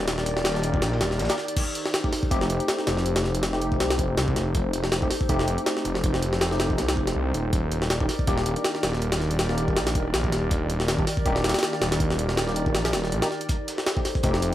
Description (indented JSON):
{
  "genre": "drum and bass, jungle",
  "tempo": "161 BPM",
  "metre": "4/4",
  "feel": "swing 55% on 16ths",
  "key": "unclear",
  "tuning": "A4 = 441 Hz",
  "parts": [
    { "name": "warbly tape-like pad", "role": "sustained chords", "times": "0.0-14.5 s", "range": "Eb3 to D5", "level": "-30 LUFS", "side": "left 1 dB", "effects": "chorus, built-in reverb" },
    { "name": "tine electric piano", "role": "stabs", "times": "0.0-14.5 s", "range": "A3 to G4", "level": "-31 LUFS", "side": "left 1 dB", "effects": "ensemble chorus, dub echo" },
    { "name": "detuned saw bass", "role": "bass", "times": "0.0-14.5 s", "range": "Eb1 to C2", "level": "-26 LUFS", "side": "equal", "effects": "none" },
    { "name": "crunchy breakbeat drum kit", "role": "drums", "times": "0.1-1.5, 13.5-14.5 s", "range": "hi-hat, snare drum", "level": "-39 LUFS", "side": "equal", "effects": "none" },
    { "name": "jungle sampler-style drum kit", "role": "drums", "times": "0.1-14.5 s", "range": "crash cymbal, hi-hat, kick drum, snare drum", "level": "-25 LUFS", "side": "equal", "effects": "none" }
  ],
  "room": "digital ambience",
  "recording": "vinyl crackle",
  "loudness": "-22 LUFS",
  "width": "side -13 dB against mid",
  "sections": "0.0-1.6 A section; 1.6-14.5 A section",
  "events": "drop 0.0-1.6, 1.6-14.5",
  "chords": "0.0 Ebmaj7; 1.6 F7; 7.5 Ebmaj7; 13.5 F7"
}